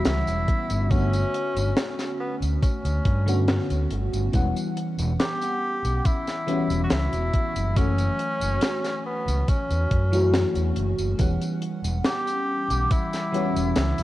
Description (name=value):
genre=vaporwave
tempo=70 BPM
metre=4/4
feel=straight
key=E dorian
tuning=A4 = 440 Hz
part: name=FM electric piano with soft pad layer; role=accompaniment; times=0.0-14.0 s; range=D3 to F#5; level=-28 LUFS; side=left 1 dB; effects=phaser, lush chorus, analog delay
part: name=deep reggae drum kit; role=drums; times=0.0-14.0 s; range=hi-hat, snare drum, tambourine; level=-29 LUFS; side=equal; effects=studio reverb
part: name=breathy tenor saxophone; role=melody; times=0.1-14.0 s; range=B3 to G4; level=-29 LUFS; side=equal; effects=tape echo
part: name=overdriven fingered electric bass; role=bass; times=0.1-14.0 s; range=E1 to G2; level=-24 LUFS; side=equal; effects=tube saturation
part: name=electronic kick drum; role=drums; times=0.5-13.1 s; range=none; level=-22 LUFS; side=equal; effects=studio reverb
room=light reverb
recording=cassette tape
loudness=-22 LUFS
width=side -16 dB against mid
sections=0.0-14.0 A section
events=none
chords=0.0 Em69; 0.9 Gmaj9#11; 4.3 Em69; 7.8 F#m7; 11.2 Em69